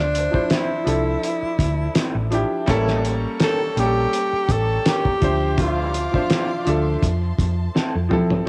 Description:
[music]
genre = lush 1970s-style soul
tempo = 83 BPM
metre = 4/4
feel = swing 54% on 16ths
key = unclear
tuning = A4 = 441 Hz
[part]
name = breathy tenor saxophone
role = melody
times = 0.0-7.0 s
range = D4 to A4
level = -26 LUFS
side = equal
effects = cassette tape, tape echo
[part]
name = clear concert grand piano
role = accompaniment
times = 0.0-8.5 s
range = F3 to E5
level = -27 LUFS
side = equal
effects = cassette tape
[part]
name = hollow-body short-scale fingered electric bass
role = bass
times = 0.0-8.4 s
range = A1 to F3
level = -25 LUFS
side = equal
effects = none
[part]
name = cloth-damped thuddy drum kit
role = drums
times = 0.1-8.5 s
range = hi-hat, kick drum, snare drum, toms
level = -25 LUFS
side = equal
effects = none
[part]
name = vibraphone with medium mallets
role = texture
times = 0.1-5.3 s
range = C5 to G5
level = -36 LUFS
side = equal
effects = cassette tape
[part]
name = electric guitar through a small old amp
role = riff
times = 0.5-7.9 s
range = F3 to Bb4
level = -32 LUFS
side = equal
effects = subtle chorus, cassette tape
[part]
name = warm studio string section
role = sustained chords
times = 2.7-8.5 s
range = F3 to D6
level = -39 LUFS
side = equal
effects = cassette tape
[part]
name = warm horn section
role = stabs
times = 2.7-6.1 s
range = C3 to F4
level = -34 LUFS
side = equal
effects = cassette tape
[sound]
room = light reverb, small room ambience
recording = home recording on cassette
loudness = -21 LUFS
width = mono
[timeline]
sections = 0.0-8.5 A section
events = drum fill 7.8-8.5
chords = 0.0 Dm9; 2.7 A7b9; 5.2 Dm9; 7.0 Fmaj7

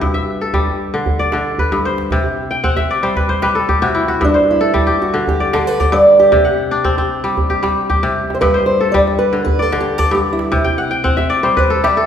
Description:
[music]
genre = west african traditional, West African string and xylophone music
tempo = 114 BPM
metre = 4/4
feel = straight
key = G major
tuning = A4 = 440 Hz
[part]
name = kora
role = arpeggios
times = 0.0-12.1 s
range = G2 to G5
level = -16 LUFS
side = left 2 dB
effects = none
[part]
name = djembe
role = percussion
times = 0.0-12.0 s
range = none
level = -20 LUFS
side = right 1 dB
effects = none
[part]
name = fingerpicked old ladder-braced acoustic guitar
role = melody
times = 4.2-12.1 s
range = D4 to E5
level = -14 LUFS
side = right 1 dB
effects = none
[sound]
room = wet recital hall reverb, RT60 1.7 s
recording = recorded in a church or concert hall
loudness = -13 LUFS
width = side -8 dB against mid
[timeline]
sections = 0.0-4.2 A section; 4.2-12.1 B section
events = kora fill 2.5-4.2, 10.7-12.1; steel-string acoustic guitar solo 4.2-12.1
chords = 0.0 G; 2.1 C5; 4.2 G5; 6.3 C5; 8.4 G5; 10.5 C

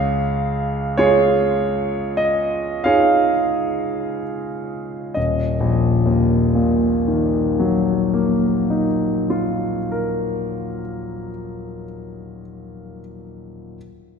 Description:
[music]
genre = classical, impressionist solo piano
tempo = 24-37 BPM (dotted quarters)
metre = 9/8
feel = rubato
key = Eb minor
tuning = A4 = 440 Hz
[part]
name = warm concert grand piano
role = solo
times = 0.0-13.8 s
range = Eb1 to F5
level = -18 LUFS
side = equal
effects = none
[sound]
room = wet concert hall reverb, RT60 2.0 s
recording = recorded in a church or concert hall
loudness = -17 LUFS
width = side -6 dB against mid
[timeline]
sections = 0.0-5.2 A section; 5.2-11.5 B section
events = slowing down 0.0-5.2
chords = 0.0 Dbadd9; 5.2 Ebmadd9

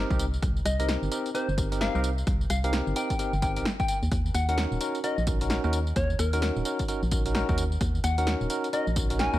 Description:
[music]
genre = UK garage, two-step garage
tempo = 130 BPM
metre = 4/4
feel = swing 61% on 16ths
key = unclear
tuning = A4 = 440 Hz
[part]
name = tine electric piano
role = stabs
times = 0.0-9.4 s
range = C4 to Bb4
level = -31 LUFS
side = equal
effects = medium stereo tremolo, dub echo
[part]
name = organ-like FM bass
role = bass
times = 0.0-9.4 s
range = Eb1 to Eb2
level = -28 LUFS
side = equal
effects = tube saturation
[part]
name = electronic kick drum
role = drums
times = 0.1-9.1 s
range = none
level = -30 LUFS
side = equal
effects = none
[part]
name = punchy analog drum machine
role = drums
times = 0.1-9.4 s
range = hi-hat, rim click, snare drum, tambourine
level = -33 LUFS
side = equal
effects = none
[part]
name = soft struck synth lead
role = melody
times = 0.7-9.4 s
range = Bb4 to Ab5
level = -32 LUFS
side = left 2 dB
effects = chorus, dub echo
[sound]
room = little or no reverb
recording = vinyl crackle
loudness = -24 LUFS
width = side -15 dB against mid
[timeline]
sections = 0.0-9.4 A section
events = none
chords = 0.0 Cm7; 4.1 Ebm7

